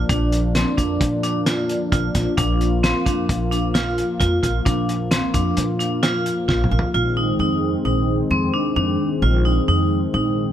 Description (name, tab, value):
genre	progressive instrumental, band music in an uneven meter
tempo	131 BPM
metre	5/4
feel	straight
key	Bb mixolydian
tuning	A4 = 440 Hz
part	dark analog pad	accompaniment	0.0-10.5 s	Eb3 to F4	-24 LUFS	left 2 dB	chorus
part	upright bass	bass	0.0-10.5 s	Bb1 to Bb2	-22 LUFS	equal	none
part	vibraphone with hard mallets	arpeggios	0.1-10.4 s	C4 to F4	-23 LUFS	right 2 dB	none
part	cloth-damped thuddy drum kit	drums	0.1-6.9 s	hi-hat, kick drum, snare drum, toms	-22 LUFS	equal	none
room	light reverb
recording	none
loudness	-17 LUFS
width	side -10 dB against mid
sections	0.0-6.9 A section; 6.9-10.5 B section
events	drum fill 6.5-6.9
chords	0.0 Bb; 6.9 Bbsus4